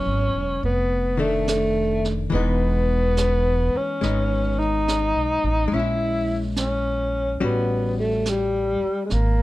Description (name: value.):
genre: jazz ballad.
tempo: 71 BPM.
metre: 4/4.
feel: swing 66% on 8ths.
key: unclear.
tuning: A4 = 440 Hz.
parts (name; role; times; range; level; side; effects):
breathy tenor saxophone; melody; 0.0-9.4 s; G3 to E4; -23 LUFS; left 1 dB; none.
archtop guitar, miked and amplified; accompaniment; 0.0-9.1 s; D#3 to A4; -28 LUFS; left 4 dB; none.
upright bass; bass; 0.1-9.4 s; E1 to B1; -24 LUFS; right 1 dB; none.
jazz brush drum kit; drums; 0.6-9.4 s; brushed snare drum, hi-hat, snare drum; -32 LUFS; right 4 dB; none.
room: light reverb.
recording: dark, warm production.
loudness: -20 LUFS.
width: side -17 dB against mid.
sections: 0.0-9.4 A section.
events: none.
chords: 0.0 F#m11; 0.6 F6; 2.3 Emaj7; 5.7 A#m7b5; 7.4 A6.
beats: 0.62 1.48 | 2.33 3.18 4.03 4.87 | 5.72 6.56 7.41 8.25 | 9.10.